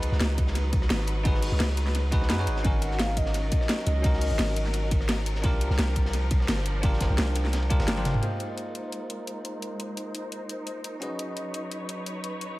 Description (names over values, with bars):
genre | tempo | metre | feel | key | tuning
liquid drum and bass | 172 BPM | 4/4 | swing 53% on 16ths | Bb phrygian | A4 = 440 Hz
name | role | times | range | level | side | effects
bell-like tine electric piano | accompaniment | 0.0-12.6 s | Bb3 to Eb5 | -35 LUFS | equal | analog delay
bright studio string section | sustained chords | 0.0-12.6 s | F3 to Db5 | -36 LUFS | equal | sidechain pumping, low-pass filter
long sustained 808-style bass | bass | 0.0-8.2 s | G1 to Gb2 | -26 LUFS | equal | none
crunchy breakbeat drum kit | drums | 0.0-8.2 s | hi-hat, ride cymbal, snare drum | -39 LUFS | equal | high-pass filter on cymbals, small room ambience, high-pass filter on hats, high-pass filter on snare, high-pass filter on room, analog delay
drum and bass drum kit | drums | 0.0-12.5 s | hi-hat, rim click, snare drum, toms | -30 LUFS | equal | overdrive, small room ambience, analog delay
electronic kick drum | drums | 0.4-7.8 s | none | -25 LUFS | equal | small room ambience
hollow clarinet-like synth lead | melody | 2.6-4.9 s | Eb5 to Ab5 | -34 LUFS | left 2 dB | chorus, analog delay
room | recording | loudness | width
studio ambience | echo-heavy mix | -24 LUFS | side -18 dB against mid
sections
0.0-8.2 A section; 8.2-12.6 B section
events
drop 0.0-8.2; band accent 7.9; drum fill 8.0; filter sweep on string section 8.2-12.6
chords
0.0 Db9sus4; 2.6 Ab9sus4; 5.4 C9sus4; 8.2 Bb9sus4; 11.0 Db9sus4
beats
0.20 0.55 0.90 | 1.25 1.60 1.95 2.30 | 2.65 3.00 3.35 3.69 | 4.04 4.39 4.74 5.09 | 5.44 5.79 6.14 6.48 | 6.83 7.18 7.53 7.88 | 8.23 8.58 8.93 9.28 | 9.62 9.97 10.32 10.67 | 11.02 11.37 11.72 12.07 | 12.41